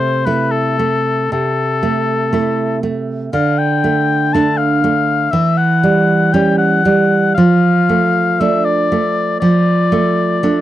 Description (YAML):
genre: romantic duo for oboe and classical guitar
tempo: 59 BPM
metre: 4/4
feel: rubato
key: unclear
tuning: A4 = 442 Hz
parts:
  - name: warm oboe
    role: melody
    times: 0.0-10.6 s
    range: A4 to A5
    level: -16 LUFS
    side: left 5 dB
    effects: none
  - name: nylon-string guitar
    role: accompaniment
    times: 0.0-10.6 s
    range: C3 to E4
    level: -14 LUFS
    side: right 2 dB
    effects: none
room: light reverb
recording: dry, close 1970s-style studio recording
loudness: -12 LUFS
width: side -13 dB against mid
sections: 0.0-10.6 A section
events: none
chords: 0.0 Am/C; 3.3 D5; 5.3 C#dim/E; 7.4 Dm/F